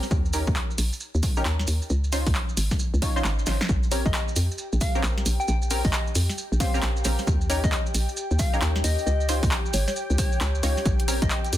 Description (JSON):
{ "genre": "UK garage, two-step garage", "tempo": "134 BPM", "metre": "4/4", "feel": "swing 63% on 16ths", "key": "Bb dorian", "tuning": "A4 = 440 Hz", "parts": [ { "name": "punchy chord stab", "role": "stabs", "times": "0.0-11.2 s", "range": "C4 to Db5", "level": "-32 LUFS", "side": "equal", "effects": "chorus, ping-pong delay" }, { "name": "punchy analog drum machine", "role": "drums", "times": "0.0-11.6 s", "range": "handclaps, hi-hat, snare drum", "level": "-30 LUFS", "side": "equal", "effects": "small room ambience" }, { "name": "maracas", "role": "percussion", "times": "0.0-11.6 s", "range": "none", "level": "-35 LUFS", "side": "right 3 dB", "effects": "none" }, { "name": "hollow knocking FM bass", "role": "bass", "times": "0.1-11.6 s", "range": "Ab1 to F2", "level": "-24 LUFS", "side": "equal", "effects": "none" }, { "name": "electronic kick drum", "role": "drums", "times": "0.1-11.3 s", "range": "none", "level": "-26 LUFS", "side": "equal", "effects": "overdrive, small room ambience" }, { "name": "warm analog pad", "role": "sustained chords", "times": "3.7-11.6 s", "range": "G4 to G5", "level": "-36 LUFS", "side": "left 2 dB", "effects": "chorus, sidechain pumping" }, { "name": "soft struck synth lead", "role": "melody", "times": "3.9-11.4 s", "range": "Db5 to G5", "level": "-32 LUFS", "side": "left 2 dB", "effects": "chorus, ping-pong delay" } ], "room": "little or no reverb", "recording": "dense, heavily limited modern master", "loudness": "-22 LUFS", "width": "side -13 dB against mid", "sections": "0.0-11.6 A section", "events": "drum fill 3.5", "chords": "0.1 Eb7; 1.9 Dbmaj9; 3.7 Bbm69; 7.3 Eb7; 9.1 Dbadd9; 10.9 Bbm69", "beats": "| 0.11 0.56 1.01 1.45 | 1.90 2.35 2.80 3.25 | 3.69 4.14 4.59 5.04 | 5.48 5.93 6.38 6.83 | 7.27 7.72 8.17 8.62 | 9.07 9.51 9.96 10.41 | 10.86 11.30" }